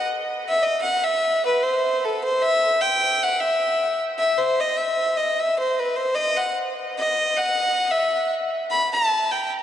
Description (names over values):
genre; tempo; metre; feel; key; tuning
balkan folk; free time; none; none; unclear; A4 = 437 Hz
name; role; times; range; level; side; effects
rich fiddle; solo; 0.0-9.5 s; A4 to B5; -19 LUFS; equal; analog delay
room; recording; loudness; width
wet huge ambient reverb, RT60 4.5 s; dreamy mix soaked in reverb, nothing above 10.9 kHz; -19 LUFS; side -10 dB against mid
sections
0.0-9.6 A section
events
fiddle solo 0.0-9.6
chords
none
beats
free time